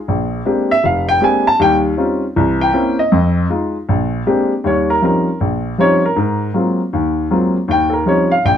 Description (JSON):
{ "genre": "solo jazz", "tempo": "158 BPM", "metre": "4/4", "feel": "swing 64% on 8ths", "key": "Eb mixolydian", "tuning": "A4 = 441 Hz", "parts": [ { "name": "warm baby grand piano", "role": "solo", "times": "0.0-8.6 s", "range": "F1 to A5", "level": "-13 LUFS", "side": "equal", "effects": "none" } ], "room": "moderate studio reverb, RT60 0.6 s", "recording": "dark, warm production", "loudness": "-13 LUFS", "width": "side -9 dB against mid", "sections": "0.0-4.6 A section; 4.6-8.6 A section", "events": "grand piano solo 0.0-4.6, 4.6-8.6", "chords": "0.1 Bb13; 1.6 Eb13; 2.3 C7b9; 3.1 Fm7; 3.9 Bb13; 4.6 Eb13; 6.2 Ab13; 7.7 Eb13", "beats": "| 0.07 0.45 0.83 1.21 | 1.59 1.97 2.35 2.73 | 3.11 3.49 3.87 4.25 | 4.63 5.01 5.39 5.77 | 6.16 6.54 6.92 7.30 | 7.68 8.06 8.44" }